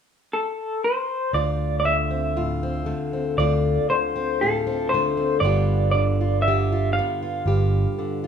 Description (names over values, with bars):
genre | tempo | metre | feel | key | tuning
acoustic folk-pop ballad | 59 BPM | 4/4 | straight | D minor | A4 = 440 Hz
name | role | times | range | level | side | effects
electric guitar through a small old amp | melody | 0.3-8.3 s | A4 to F5 | -24 LUFS | equal | tremolo
fingerpicked plugged-in steel-string acoustic guitar | accompaniment | 1.3-8.3 s | D2 to G4 | -25 LUFS | left 2 dB | none
fingered electric bass | bass | 1.3-7.9 s | G1 to D2 | -23 LUFS | equal | none
room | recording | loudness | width
moderate large studio reverb, RT60 0.9 s | minimal, uncompressed stereo recording | -20 LUFS | side -7 dB against mid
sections
0.0-1.3 A section; 1.3-8.3 B section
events
none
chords
0.0 N.C.; 1.3 Dm7; 5.4 G7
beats
0.32 | 1.34 2.36 3.38 4.40 | 5.42 6.44 7.46